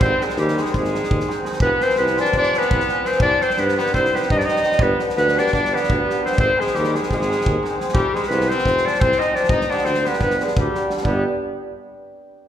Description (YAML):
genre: balkan folk, Balkan wedding band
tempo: 343 BPM (eighths)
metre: 9/8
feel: straight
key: G phrygian dominant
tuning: A4 = 436 Hz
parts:
  - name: warm clarinet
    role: melody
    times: 0.0-11.2 s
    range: G4 to Eb5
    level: -20 LUFS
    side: equal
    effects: none
  - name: bright trumpet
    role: second line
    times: 0.0-11.2 s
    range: G3 to Eb4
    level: -26 LUFS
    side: left 3 dB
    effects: none
  - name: hammered dulcimer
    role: accompaniment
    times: 0.0-11.2 s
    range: D3 to Ab4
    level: -25 LUFS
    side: left 1 dB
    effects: none
  - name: warm tuba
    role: bass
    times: 0.0-11.2 s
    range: F1 to G2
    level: -25 LUFS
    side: equal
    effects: none
  - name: loose indie drum kit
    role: percussion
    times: 0.0-11.2 s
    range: kick drum, snare drum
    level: -24 LUFS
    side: equal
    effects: none
room: wet recital hall reverb, RT60 1.7 s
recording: recorded in a church or concert hall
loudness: -17 LUFS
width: side -10 dB against mid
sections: 0.0-11.0 A section; 11.0-12.5 B section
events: speeding up 0.0-12.5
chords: 0.0 Ab; 1.6 Fm; 3.2 Cm; 4.8 G; 6.4 Ab; 7.9 Fm; 9.5 G